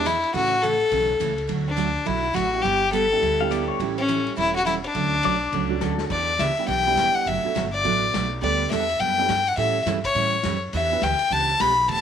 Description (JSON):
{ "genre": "country, western swing", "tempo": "208 BPM", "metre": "4/4", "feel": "swing 61% on 8ths", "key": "unclear", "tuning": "A4 = 440 Hz", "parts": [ { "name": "clear fiddle", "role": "melody", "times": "0.0-12.0 s", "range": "C#4 to B5", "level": "-21 LUFS", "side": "left 3 dB", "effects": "none" }, { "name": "warm upright piano", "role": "accompaniment", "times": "0.0-0.5, 2.5-11.0 s", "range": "E3 to B4", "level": "-30 LUFS", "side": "right 14 dB", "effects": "none" }, { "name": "upright bass", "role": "bass", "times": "0.0-12.0 s", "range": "E1 to A2", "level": "-30 LUFS", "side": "equal", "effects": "none" }, { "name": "picked steel-string acoustic guitar", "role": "accompaniment", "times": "0.1-12.0 s", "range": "B2 to A4", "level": "-29 LUFS", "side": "right 13 dB", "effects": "none" }, { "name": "vintage drum kit", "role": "drums", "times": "0.1-12.0 s", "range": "crash cymbal, hi-hat, kick drum, ride cymbal, snare drum", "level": "-35 LUFS", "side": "left 9 dB", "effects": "none" }, { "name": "pedal steel guitar", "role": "second line", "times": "3.4-6.0 s", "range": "A4 to F5", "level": "-30 LUFS", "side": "left 10 dB", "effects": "tape echo" } ], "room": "light reverb, small room ambience", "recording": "1960s-style stereo with parts hard left and right", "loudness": "-20 LUFS", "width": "side -8 dB against mid", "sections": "0.0-6.1 A section; 6.1-12.0 B section", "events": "drum fill 5.8", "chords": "0.3 A; 1.5 D; 2.6 G6; 3.8 A7; 5.0 Dmaj7; 6.1 Em7; 7.3 Bm7/F#; 8.4 Gadd9; 9.6 A7; 10.7 Em7" }